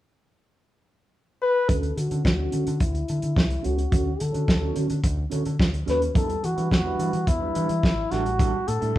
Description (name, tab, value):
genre	disco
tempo	108 BPM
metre	4/4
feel	straight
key	D major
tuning	A4 = 441 Hz
part	warm flugelhorn	melody	1.4-9.0 s	E4 to B4	-27 LUFS	left 2 dB	low-pass filter
part	clean electric guitar	accompaniment	1.7-9.0 s	G3 to C#5	-31 LUFS	right 5 dB	low-pass filter
part	deep dub fingered electric bass	bass	1.7-9.0 s	G#1 to E3	-27 LUFS	equal	none
part	warm soul drum kit	drums	1.7-9.0 s	hi-hat, kick drum, snare drum	-23 LUFS	equal	none
room	moderate large studio reverb, RT60 0.9 s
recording	band playing live in one room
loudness	-21 LUFS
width	side -14 dB against mid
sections	0.0-1.7 A section; 1.7-9.0 B section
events	none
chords	0.0 N.C.; 1.7 Dmaj7; 6.2 Em7; 8.1 A7sus4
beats	0.02 0.57 1.13 | 1.69 2.25 2.81 3.36 | 3.92 4.48 5.04 5.60 | 6.16 6.71 7.27 7.83 | 8.39 8.95